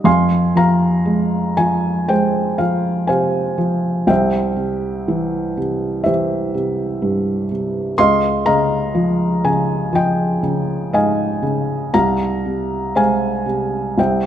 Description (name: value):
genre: classical, lyrical solo piano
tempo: 60 BPM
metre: 4/4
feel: rubato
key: F minor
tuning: A4 = 440 Hz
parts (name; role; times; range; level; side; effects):
- felt-muted upright piano; solo; 0.0-14.3 s; C2 to C6; -15 LUFS; equal; none
room: moderate scoring stage reverb, RT60 1.6 s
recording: none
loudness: -16 LUFS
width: side -10 dB against mid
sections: 0.1-14.3 A section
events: none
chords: 0.1 Fm; 4.1 C; 8.0 Dbadd9; 11.9 Fm/C